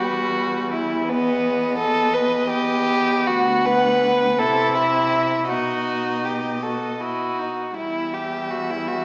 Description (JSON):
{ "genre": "classical, slow romantic movement for string quartet", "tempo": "54 BPM (dotted quarters)", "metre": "6/8", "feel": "uneven beats, rubato", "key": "unclear", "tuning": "A4 = 440 Hz", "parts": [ { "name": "warm violin", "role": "melody", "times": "0.0-9.0 s", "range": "B4 to F#5", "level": "-30 LUFS", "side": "equal", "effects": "none" }, { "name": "rich violin", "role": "second line", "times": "0.0-9.0 s", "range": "B3 to B4", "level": "-24 LUFS", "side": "equal", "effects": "none" }, { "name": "rich viola", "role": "accompaniment", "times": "0.0-9.0 s", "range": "G3 to F#4", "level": "-28 LUFS", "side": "equal", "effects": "none" }, { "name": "dark cello", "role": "bass", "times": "0.0-9.0 s", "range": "D2 to C3", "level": "-31 LUFS", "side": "equal", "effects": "none" } ], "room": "wet recital hall reverb, RT60 1.4 s", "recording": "small speaker sound", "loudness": "-21 LUFS", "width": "mono", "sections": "0.0-9.0 A section", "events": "none", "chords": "0.0 Em; 1.1 B/E; 3.3 Bm/D; 4.4 C6; 5.5 B; 7.8 Em", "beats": "| 1.08 2.14 | 3.27 4.39 | 5.49 6.64 | 7.78 8.90" }